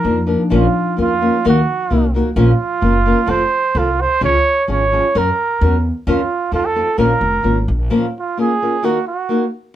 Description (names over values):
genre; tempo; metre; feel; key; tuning
mexican folk, mariachi; 130 BPM; 2/4; rubato; Bb minor; A4 = 440 Hz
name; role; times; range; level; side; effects
mellow trumpet; melody; 0.0-9.5 s; F4 to Db5; -17 LUFS; right 4 dB; none
nylon-string guitar; accompaniment; 0.0-9.4 s; Bb2 to Bb4; -17 LUFS; left 2 dB; none
concert harp; arpeggios; 0.0-3.1 s; F3 to Eb4; -23 LUFS; left 3 dB; none
upright bass; bass; 0.0-7.9 s; F1 to Gb2; -18 LUFS; equal; none
room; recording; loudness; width
light reverb; dark, warm production; -14 LUFS; side -12 dB against mid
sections
0.5-7.9 A section; 7.9-9.8 A section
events
none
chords
0.0 Bb; 0.5 Bbm; 1.4 Ebm; 2.4 Bbm; 3.3 F; 4.2 Db; 5.1 Gb; 6.1 Bbm/F; 6.5 F7; 7.0 Bbm; 8.8 Ebm